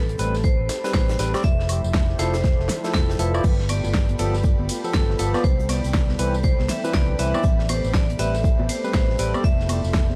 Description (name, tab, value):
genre	deep house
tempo	120 BPM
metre	4/4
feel	swing 61% on 16ths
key	A minor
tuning	A4 = 440 Hz
part	vibraphone with hard mallets	melody	0.0-10.2 s	A4 to E5	-32 LUFS	equal	analog delay
part	airy breathy pad	sustained chords	0.1-10.2 s	F3 to B5	-38 LUFS	equal	none
part	fingered electric bass	bass	0.0-10.2 s	F1 to C2	-27 LUFS	equal	sidechain pumping
part	granular cloud pad	texture	0.2-10.2 s	A4 to B5	-40 LUFS	equal	built-in reverb, sidechain pumping
part	modern studio drum kit	drums	0.1-10.2 s	hi-hat, shaker, snare drum	-40 LUFS	equal	sidechain pumping on hats, high-pass filter on hats, studio reverb, high-pass filter on snare, sidechain pumping on perc, high-pass filter on perc, high-pass filter on room
part	barky tine electric piano	stabs	0.2-9.4 s	E3 to D5	-30 LUFS	equal	sidechain pumping, analog delay
part	deep house drum kit	drums	0.2-10.1 s	crash cymbal, hi-hat, ride cymbal, snare drum, tambourine, woodblock	-32 LUFS	equal	studio reverb
part	electronic kick drum	drums	0.4-10.1 s	none	-23 LUFS	equal	studio reverb
part	congas and bongos	percussion	3.4-10.2 s	none	-36 LUFS	equal	none
room	small room ambience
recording	cassette tape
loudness	-21 LUFS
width	mono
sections	0.0-10.2 A section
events	none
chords	0.0 Am9; 1.4 Fmaj7; 3.4 G9; 5.4 Cmaj7; 7.4 Am9; 9.4 Fmaj7